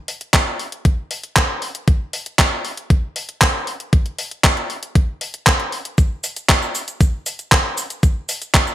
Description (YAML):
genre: italo disco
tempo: 117 BPM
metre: 4/4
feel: straight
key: none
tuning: none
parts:
  - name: clean 12-bit digital drum machine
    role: drums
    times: 0.1-8.7 s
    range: cabasa, handclaps, hi-hat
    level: -18 LUFS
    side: equal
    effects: overdrive, small room reverb, gated reverb
  - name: electronic kick drum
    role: drums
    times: 0.3-8.6 s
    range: none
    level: -15 LUFS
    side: equal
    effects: overdrive, small room reverb
room: light reverb, digital ambience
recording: bright 1980s-style digital production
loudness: -16 LUFS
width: side -13 dB against mid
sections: 0.0-8.7 A section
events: none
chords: none